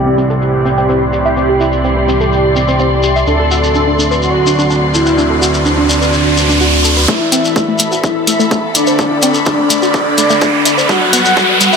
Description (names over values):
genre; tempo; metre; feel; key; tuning
melodic techno; 126 BPM; 4/4; straight; A dorian; A4 = 440 Hz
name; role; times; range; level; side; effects
mellow synth brass; melody; 0.0-11.8 s; D4 to A4; -16 LUFS; equal; chorus, dub echo
dark analog pad; sustained chords; 0.0-11.8 s; G3 to D5; -22 LUFS; right 1 dB; chorus, sidechain pumping
fat analog bass; bass; 0.0-7.1 s; C2 to D2; -16 LUFS; equal; sidechain pumping
overtone-sweeping drone; drone; 0.0-7.1 s; A2 to E3; -26 LUFS; right 2 dB; chorus, built-in reverb, sidechain pumping
dark studio string section; texture; 0.0-11.8 s; G3 to C6; -19 LUFS; left 1 dB; sidechain pumping
woody wave-folded pluck; arpeggios; 0.1-11.8 s; G3 to F#5; -18 LUFS; equal; chorus, phaser, cassette tape, sidechain pumping, dub echo
shekere; percussion; 0.2-11.8 s; none; -19 LUFS; left 3 dB; none
riser; sound effects; 4.3-11.8 s; none; -16 LUFS; right 1 dB; none
soft supersaw; second line; 7.1-11.8 s; D5 to F#5; -17 LUFS; equal; sidechain pumping, low-pass filter, dub echo
electronic kick drum; drums; 7.1-11.5 s; none; -17 LUFS; right 1 dB; high-pass filter on kick, high-pass filter on room
electronic hi-hat; drums; 7.3-11.7 s; none; -14 LUFS; left 2 dB; none
room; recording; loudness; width
moderate lush hall reverb, RT60 1.6 s, digital ambience; high-pass filter, low-pass filter; -10 LUFS; side -5 dB against mid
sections
0.0-7.1 A section; 7.1-11.8 B section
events
filter sweep on synth pluck 0.0-7.1, 7.1-11.8; filter sweep 0.0-7.1; riser 4.3-7.1, 7.1-11.8; build-up 7.1-11.8; filter sweep on analog polysynth 7.1-11.8; filter sweep on supersaw synth 7.1-11.8; drum fill 10.9-11.8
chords
0.0 Cadd9; 3.3 D7; 7.1 Amadd9; 10.9 Gmaj7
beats
0.42 0.89 | 1.37 1.85 2.32 2.80 | 3.27 3.75 4.23 4.70 | 5.18 5.66 6.13 6.61 | 7.08 7.56 8.04 8.51 | 8.99 9.46 9.94 10.42 | 10.89 11.37